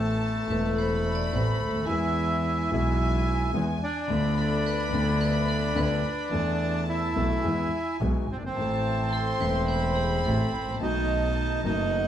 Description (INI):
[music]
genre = tango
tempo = 108 BPM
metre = 4/4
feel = rubato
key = A harmonic minor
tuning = A4 = 440 Hz
[part]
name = bandoneon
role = melody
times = 0.0-12.1 s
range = A3 to E4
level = -28 LUFS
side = right 2 dB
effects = none
[part]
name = warm chamber violin section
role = second line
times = 0.0-12.1 s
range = F#5 to C6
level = -35 LUFS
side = left 1 dB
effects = none
[part]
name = dark concert grand piano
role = accompaniment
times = 0.0-12.1 s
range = E1 to A4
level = -29 LUFS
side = left 3 dB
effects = none
[part]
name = clear double bass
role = bass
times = 0.0-12.1 s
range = E1 to E2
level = -29 LUFS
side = right 1 dB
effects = none
[part]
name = vibraphone with hard mallets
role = second line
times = 0.5-10.6 s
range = G#4 to D5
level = -36 LUFS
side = left 1 dB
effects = none
[sound]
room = wet studio reverb, RT60 0.8 s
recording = heard from further back in the room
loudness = -24 LUFS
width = side -10 dB against mid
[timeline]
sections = 0.0-12.1 A section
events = none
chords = 0.0 Amadd9; 1.9 E; 4.1 Bm7b5/D; 6.3 Esus4; 7.4 E; 8.6 Am; 10.8 B7